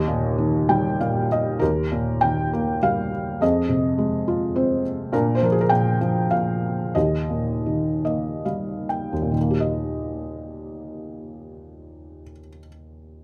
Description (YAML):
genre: classical, lyrical solo piano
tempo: 62-106 BPM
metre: 3/4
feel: rubato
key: Eb major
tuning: A4 = 442 Hz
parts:
  - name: felt-muted upright piano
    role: solo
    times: 0.0-13.2 s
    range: Eb2 to G5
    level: -23 LUFS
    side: equal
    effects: none
room: little or no reverb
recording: close, detailed microphones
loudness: -23 LUFS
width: mono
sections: 0.0-1.6 A section; 1.6-9.4 B section; 9.4-13.2 C section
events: felt piano fill 0.4-1.6, 4.3-5.1, 7.7-9.4; slowing down 5.1-9.4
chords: 0.0 Eb; 3.4 Fm; 5.1 Bb; 7.0 Eb